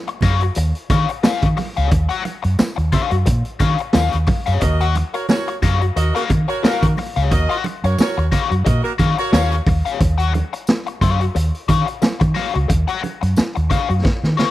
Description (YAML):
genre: funk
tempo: 89 BPM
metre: 4/4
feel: swing 56% on 16ths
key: Eb minor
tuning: A4 = 442 Hz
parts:
  - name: overdriven electric guitar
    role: accompaniment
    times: 0.1-14.5 s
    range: Gb4 to Gb5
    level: -23 LUFS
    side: left 8 dB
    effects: wah, spring reverb
  - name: raw garage drum kit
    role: drums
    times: 0.1-14.5 s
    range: hi-hat, kick drum, snare drum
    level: -19 LUFS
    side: equal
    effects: none
  - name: vintage muted fingered electric bass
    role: bass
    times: 0.2-14.3 s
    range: Db2 to Eb3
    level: -18 LUFS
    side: equal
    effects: none
  - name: congas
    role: percussion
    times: 0.2-14.5 s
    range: none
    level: -27 LUFS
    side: right 5 dB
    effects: none
  - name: tambourine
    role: percussion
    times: 1.2-13.5 s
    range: none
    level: -37 LUFS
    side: left 5 dB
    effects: none
  - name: warm horn section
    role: second line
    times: 4.6-9.6 s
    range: Bb3 to Eb5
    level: -24 LUFS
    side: right 2 dB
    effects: none
room: small room ambience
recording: dry, close 1970s-style studio recording, faint mains hum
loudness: -15 LUFS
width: side -15 dB against mid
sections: 0.0-14.5 A section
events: drum fill 14.0-14.5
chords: 0.0 Ebm9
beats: 0.57 1.24 | 1.92 2.59 3.26 3.94 | 4.61 5.29 5.96 6.63 | 7.31 7.98 8.66 9.33 | 10.00 10.68 11.35 12.02 | 12.70 13.37 14.04